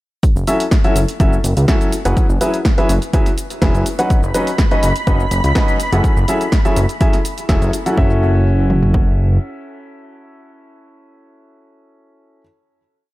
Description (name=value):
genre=piano house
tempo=124 BPM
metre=4/4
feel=straight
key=F# dorian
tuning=A4 = 440 Hz
part: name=punchy analog drum machine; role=drums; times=0.2-9.1 s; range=kick drum, toms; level=-16 LUFS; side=equal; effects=none
part: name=punchy analog drum machine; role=drums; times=0.2-8.0 s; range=hi-hat, shaker, snare drum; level=-24 LUFS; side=equal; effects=none
part: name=fat analog bass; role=bass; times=0.4-9.4 s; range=E1 to C#2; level=-16 LUFS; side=equal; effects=sidechain pumping
part: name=warm baby grand piano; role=riff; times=0.5-12.4 s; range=F#3 to F#5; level=-19 LUFS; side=left 1 dB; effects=sidechain pumping, tape echo
part: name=analog string pad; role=sustained chords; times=4.1-8.0 s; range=B5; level=-24 LUFS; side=right 1 dB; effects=ensemble chorus, sidechain pumping
room=little or no reverb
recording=echo-heavy mix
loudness=-13 LUFS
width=side -18 dB against mid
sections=0.2-8.0 drop; 8.0-11.8 final chord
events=drop 0.2-8.0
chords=0.2 F#m7; 2.2 C#m7/F#; 4.1 Badd9/F#; 6.0 Amaj7/F#; 8.0 F#m7